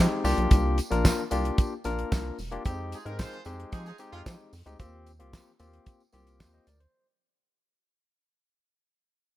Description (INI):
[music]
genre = early-eighties boogie funk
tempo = 112 BPM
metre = 4/4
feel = straight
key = unclear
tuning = A4 = 440 Hz
[part]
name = barky tine electric piano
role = accompaniment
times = 0.0-7.1 s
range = Ab3 to Eb5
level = -31 LUFS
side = left 3 dB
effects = none
[part]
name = rubbery square bass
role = bass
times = 0.0-6.9 s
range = E1 to F3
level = -29 LUFS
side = right 1 dB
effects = none
[part]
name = damped 70s drum kit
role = drums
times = 0.2-6.9 s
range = handclaps, hi-hat, kick drum, snare drum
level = -23 LUFS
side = equal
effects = none
[part]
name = tambourine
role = percussion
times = 0.2-6.8 s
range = none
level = -41 LUFS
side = right 5 dB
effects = none
[part]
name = clear horn section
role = second line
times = 2.9-4.2 s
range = Ab3 to C5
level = -47 LUFS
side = right 2 dB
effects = slapback echo
[sound]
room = little or no reverb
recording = none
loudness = -25 LUFS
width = side -15 dB against mid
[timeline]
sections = 0.0-6.9 A section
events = fade-out 0.0-6.9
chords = 0.2 C9sus4; 2.7 Fm7; 4.8 Eb6